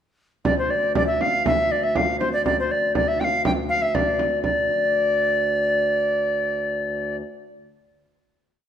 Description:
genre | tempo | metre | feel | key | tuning
medieval dance | 121 BPM | 2/4 | straight | D minor | A4 = 439 Hz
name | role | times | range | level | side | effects
tenor recorder | melody | 0.5-7.2 s | C5 to G5 | -21 LUFS | equal | none
pedal harmonium | drone | 0.5-7.2 s | D2 | -32 LUFS | left 2 dB | none
frame drum | percussion | 0.5-4.7 s | none | -25 LUFS | right 2 dB | none
room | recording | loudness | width
wet recital hall reverb, RT60 1.6 s | minimal, uncompressed stereo recording | -19 LUFS | side -9 dB against mid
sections
0.4-4.4 A section; 4.4-6.4 final note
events
none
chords
none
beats
| 0.45 0.95 | 1.45 1.95 | 2.45 2.94 | 3.44 3.94 | 4.43 4.93 | 5.42 5.92

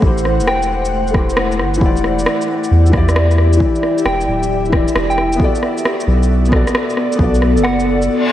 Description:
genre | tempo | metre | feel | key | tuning
future garage | 134 BPM | 4/4 | swing 67% on 16ths | unclear | A4 = 440 Hz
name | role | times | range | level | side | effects
felt-muted upright piano | accompaniment | 0.0-8.3 s | E3 to D5 | -18 LUFS | left 2 dB | analog chorus, sidechain pumping, diffuse ambient delay
ethereal airy pad | sustained chords | 0.0-8.3 s | A3 to F#5 | -20 LUFS | equal | ensemble chorus, built-in reverb, sidechain pumping
soft dub sub bass | bass | 0.0-8.1 s | D1 to E2 | -16 LUFS | equal | sidechain pumping
electronic kick drum | drums | 0.0-7.3 s | none | -16 LUFS | equal | none
electronic shaker and rim click | drums | 0.2-8.1 s | none | -22 LUFS | equal | none
soft struck synth lead | melody | 0.5-0.7, 4.1-7.9 s | F#5 to G5 | -22 LUFS | left 1 dB | chorus, ping-pong delay
reverse cymbal | sound effects | 8.2-8.3 s | none | -18 LUFS | left 4 dB | none
room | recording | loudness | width
moderate lush hall reverb, RT60 1.9 s, digital ambience | dreamy mix soaked in reverb, vinyl crackle | -12 LUFS | side -12 dB against mid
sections
0.0-8.3 A section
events
reverse cymbal 8.2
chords
0.0 Am7; 1.8 Em7; 5.4 Bm7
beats
| 0.03 0.47 0.92 1.37 | 1.82 2.27 2.71 3.16 | 3.61 4.06 4.50 4.95 | 5.40 5.85 6.30 6.74 | 7.19 7.64 8.09

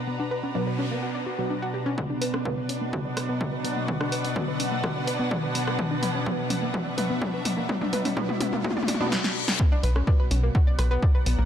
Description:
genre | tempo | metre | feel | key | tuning
melodic techno | 126 BPM | 4/4 | straight | B harmonic minor | A4 = 445 Hz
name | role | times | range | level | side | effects
evolving wavetable pad | sustained chords | 0.0-11.5 s | B2 to A#5 | -33 LUFS | equal | phaser, built-in reverb, sidechain pumping
analog pluck | arpeggios | 0.0-11.5 s | A#3 to D6 | -32 LUFS | left 1 dB | chorus, sidechain pumping, ping-pong delay
filtered dub chord stab | stabs | 0.0-11.5 s | B2 to B3 | -34 LUFS | right 2 dB | phaser, analog chorus, vintage 12-bit sampler grit, sidechain pumping, ping-pong delay
rich studio string section | texture | 0.0-9.1 s | D4 to F#5 | -34 LUFS | equal | sidechain pumping
noise sweep, riser and reverse cymbal | sound effects | 0.4-9.6 s | none | -37 LUFS | left 2 dB | none
overtone-sweeping drone | drone | 2.7-11.5 s | B2 to F#3 | -37 LUFS | left 1 dB | chorus, built-in reverb, sidechain pumping
electronic kick drum | drums | 2.0-11.1 s | none | -24 LUFS | equal | high-pass filter on kick
punchy analog drum machine | drums | 2.0-11.4 s | hi-hat, rim click, snare drum, toms | -29 LUFS | left 1 dB | overdrive
tight sequencer bass | bass | 9.8-11.5 s | B1 | -22 LUFS | equal | tube saturation, sidechain pumping
room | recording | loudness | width
light reverb | dark, warm production | -23 LUFS | side -9 dB against mid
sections
0.0-2.0 A section; 2.0-9.6 B section; 9.6-11.5 C section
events
filter sweep on ambient pad 0.0-2.0; noise sweep 0.4-2.0; build-up 2.0-9.6; drum fill 2.0-9.1, 9.1-9.6; filter sweep on synth pluck 2.0-9.6; reverse cymbal 8.6-9.6; drop 9.6-11.5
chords
0.0 Bm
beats
| 0.07 0.55 1.03 1.50 | 1.98 2.45 2.93 3.41 | 3.88 4.36 4.83 5.31 | 5.79 6.26 6.74 7.22 | 7.69 8.17 8.64 9.12 | 9.60 10.07 10.55 11.03

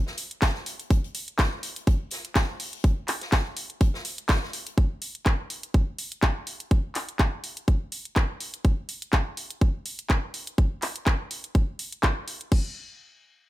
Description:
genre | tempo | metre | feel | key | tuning
house | 124 BPM | 4/4 | swing 55% on 16ths | none | none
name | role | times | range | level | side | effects
street-band drum kit | drums | 0.1-4.8 s | hi-hat, snare drum | -38 LUFS | left 2 dB | high-pass filter on hats, small room reverb, high-pass filter on snare, high-pass filter on room
garage drum kit | drums | 0.2-12.6 s | crash cymbal, handclaps, hi-hat | -29 LUFS | equal | small room reverb
electronic kick drum | drums | 0.4-12.6 s | none | -21 LUFS | equal | small room reverb
room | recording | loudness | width
small room ambience | none | -24 LUFS | side -16 dB against mid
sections
0.0-12.5 A section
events
none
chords
none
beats
0.42 | 0.90 1.39 1.87 2.36 | 2.84 3.32 3.81 4.29 | 4.78 5.26 5.74 6.23 | 6.71 7.20 7.68 8.16 | 8.65 9.13 9.61 10.10 | 10.58 11.07 11.55 12.03 | 12.52

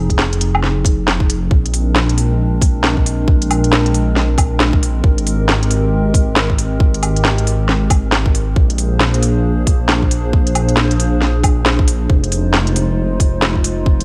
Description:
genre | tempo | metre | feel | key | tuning
future garage | 136 BPM | 4/4 | swing 61% on 16ths | unclear | A4 = 444 Hz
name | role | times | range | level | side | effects
warbly tape-like pad | sustained chords | 0.0-14.0 s | F3 to C5 | -23 LUFS | equal | chorus, built-in reverb, sidechain pumping
dark detuned saw bass | bass | 0.0-14.0 s | F1 to Bb1 | -19 LUFS | equal | sidechain pumping
electronic kick drum | drums | 0.1-14.0 s | none | -16 LUFS | equal | small room ambience
organic electronic drum kit | drums | 0.1-14.0 s | hi-hat, snare drum, woodblock | -20 LUFS | equal | small room ambience
room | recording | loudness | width
light reverb, digital ambience | none | -15 LUFS | mono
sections
0.0-1.5 A section; 1.5-14.0 B section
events
none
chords
0.0 Fm7; 1.5 Bb9; 5.0 Abmaj9; 8.6 Bb9; 12.1 Fm7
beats
0.19 0.63 1.07 | 1.51 1.95 2.39 2.83 | 3.27 3.71 4.16 4.60 | 5.04 5.48 5.92 6.36 | 6.80 7.24 7.69 8.13 | 8.57 9.01 9.45 9.89 | 10.33 10.77 11.21 11.66 | 12.10 12.54 12.98 13.42 | 13.86

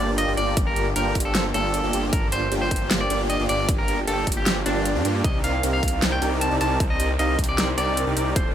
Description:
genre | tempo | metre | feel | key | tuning
future bass | 154 BPM | 4/4 | half-time | unclear | A4 = 440 Hz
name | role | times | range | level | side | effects
electric guitar at the edge of break-up | melody | 0.0-8.5 s | D4 to A5 | -26 LUFS | right 1 dB | sidechain pumping, tape echo
warm chamber string section | sustained chords | 0.0-8.5 s | F3 to G4 | -35 LUFS | left 2 dB | none
supersaw chords | riff | 0.0-8.5 s | Bb3 to G5 | -26 LUFS | right 1 dB | sidechain pumping
wide detuned saw bass | bass | 0.0-8.5 s | D1 to G2 | -26 LUFS | equal | chorus, sidechain pumping
big-room dance drum kit | drums | 0.2-8.4 s | hi-hat, snare drum | -26 LUFS | equal | overdrive
electronic kick drum | drums | 0.6-8.4 s | none | -24 LUFS | equal | overdrive
room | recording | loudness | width
little or no reverb | none | -20 LUFS | side -10 dB against mid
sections
0.0-8.5 A section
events
none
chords
0.0 Gm7; 5.2 Cm9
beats
0.18 | 0.57 0.96 1.35 1.74 | 2.13 2.52 2.91 3.30 | 3.69 4.08 4.46 4.86 | 5.24 5.63 6.02 6.41 | 6.80 7.19 7.58 7.97 | 8.36

